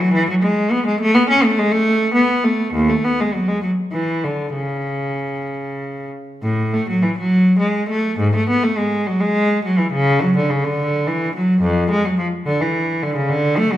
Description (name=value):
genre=classical, baroque-style suite movement for unaccompanied cello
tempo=94-109 BPM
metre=3/4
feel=rubato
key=A major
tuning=A4 = 440 Hz
part: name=rich cello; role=solo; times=0.0-13.8 s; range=D#2 to C#4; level=-16 LUFS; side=equal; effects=none
room=wet recital hall reverb, RT60 1.7 s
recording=minimal, uncompressed stereo recording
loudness=-16 LUFS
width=side -13 dB against mid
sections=0.0-6.4 A section; 6.4-13.8 A section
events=none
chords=none